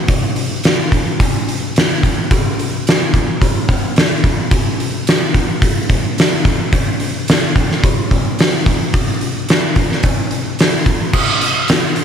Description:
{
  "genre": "rock",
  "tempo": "109 BPM",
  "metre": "4/4",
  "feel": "straight",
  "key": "none",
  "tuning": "none",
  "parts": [
    { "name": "oversized low-tuned drum kit", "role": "drums", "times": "0.1-12.0 s", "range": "crash cymbal, hi-hat, kick drum, snare drum", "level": "-13 LUFS", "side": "equal", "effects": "none" }
  ],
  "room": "little or no reverb",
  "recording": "none",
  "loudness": "-13 LUFS",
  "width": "side -8 dB against mid",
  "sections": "0.0-11.1 A section",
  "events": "none",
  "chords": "none"
}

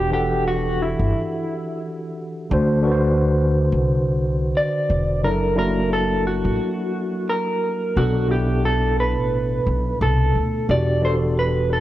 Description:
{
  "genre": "lo-fi hip hop",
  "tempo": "88 BPM",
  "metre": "4/4",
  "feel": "swing 55% on 16ths",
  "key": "E minor",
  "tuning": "A4 = 439 Hz",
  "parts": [
    { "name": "electric guitar through a small old amp", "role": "melody", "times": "0.0-11.8 s", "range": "E4 to D5", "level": "-23 LUFS", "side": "right 1 dB", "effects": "tremolo, analog delay" },
    { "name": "mellow tine electric piano", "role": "accompaniment", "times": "0.0-11.8 s", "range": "B2 to F#5", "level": "-22 LUFS", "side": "equal", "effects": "medium stereo tremolo, cassette tape" },
    { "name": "upright bass", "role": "bass", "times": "0.0-11.8 s", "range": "E1 to D2", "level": "-22 LUFS", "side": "equal", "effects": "none" }
  ],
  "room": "light reverb, small room ambience",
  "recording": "worn, warbling old tape, cassette tape, warbly pitch drift",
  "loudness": "-18 LUFS",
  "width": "side -14 dB against mid",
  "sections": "0.0-11.8 A section",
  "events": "none",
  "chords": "0.0 Em9; 2.5 D7; 5.2 F#7alt; 8.0 Bm7; 10.7 Em9"
}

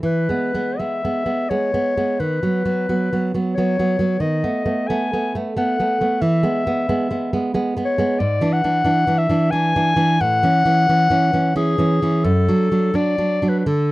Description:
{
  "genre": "romantic duo for clarinet and classical guitar",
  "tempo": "76-93 BPM",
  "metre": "3/4",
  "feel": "rubato",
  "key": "E major, A major from 8.2 s",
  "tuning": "A4 = 440 Hz",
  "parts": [
    { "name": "nylon-string guitar", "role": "accompaniment", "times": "0.0-13.9 s", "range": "F#2 to D4", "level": "-19 LUFS", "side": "right 2 dB", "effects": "none" },
    { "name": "clear clarinet", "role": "melody", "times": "0.1-13.9 s", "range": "G#4 to G#5", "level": "-20 LUFS", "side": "left 2 dB", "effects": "none" }
  ],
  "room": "light reverb",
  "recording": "dry, close 1970s-style studio recording",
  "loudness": "-17 LUFS",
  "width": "side -18 dB against mid",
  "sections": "0.0-13.9 A section",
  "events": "none",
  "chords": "0.0 E; 2.2 B5; 4.2 B7/D#; 6.2 E; 8.2 E7/G#; 10.2 A (rootless); 12.2 D/F#"
}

